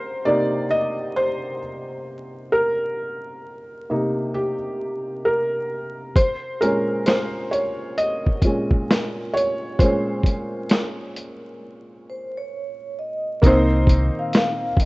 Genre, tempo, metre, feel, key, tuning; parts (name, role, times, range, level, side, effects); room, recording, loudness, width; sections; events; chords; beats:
lo-fi hip hop; 66 BPM; 4/4; swing 62% on 16ths; C phrygian; A4 = 440 Hz
felt-muted upright piano; accompaniment; 0.0-14.9 s; Bb2 to F5; -22 LUFS; equal
lo-fi sampler-style drum kit; drums; 6.2-14.9 s; hi-hat, kick drum, snare drum; -18 LUFS; equal
vibraphone with soft mallets; melody; 12.1-14.9 s; C5 to F5; -28 LUFS; equal
hollow soft pad; sustained chords; 14.1-14.9 s; Bb2 to C4; -33 LUFS; equal; chorus
deep dub fingered electric bass; bass; 13.4-14.1 s; C2; -18 LUFS; equal
little or no reverb; rough home demo mix, vinyl crackle, nothing above 8.0 kHz; -19 LUFS; side -23 dB against mid
0.0-13.4 A section; 13.4-14.9 B section
felt piano solo 0.0-13.4; break 11.6-13.4
0.0 Cm7; 6.2 Bbm9; 13.4 Cm7
0.71 1.61 | 2.52 3.43 4.34 5.25 | 6.16 7.07 7.98 8.89 | 9.80 10.71 11.62 12.52 | 13.43 14.34